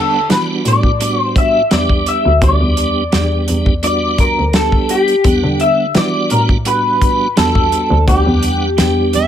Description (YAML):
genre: straight-eighth soul blues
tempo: 85 BPM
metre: 4/4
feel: straight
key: E minor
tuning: A4 = 440 Hz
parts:
  - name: electric guitar through a small old amp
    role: melody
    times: 0.0-9.3 s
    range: G4 to E5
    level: -15 LUFS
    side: left 2 dB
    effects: analog chorus
  - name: tonewheel organ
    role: accompaniment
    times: 0.0-9.3 s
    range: G3 to F#5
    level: -20 LUFS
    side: right 4 dB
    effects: slow rotary speaker, overdrive, chorus vibrato
  - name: clear double bass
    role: bass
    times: 0.0-9.3 s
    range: D2 to E3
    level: -17 LUFS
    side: equal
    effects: none
  - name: warm soul drum kit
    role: drums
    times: 0.3-9.3 s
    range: hi-hat, kick drum, snare drum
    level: -16 LUFS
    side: equal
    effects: none
  - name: overdriven harmonica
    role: second line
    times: 9.2-9.3 s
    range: E5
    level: -14 LUFS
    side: right 7 dB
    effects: none
room: small room ambience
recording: none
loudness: -11 LUFS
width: side -10 dB against mid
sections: 0.0-9.3 A section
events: none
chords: 0.0 Em9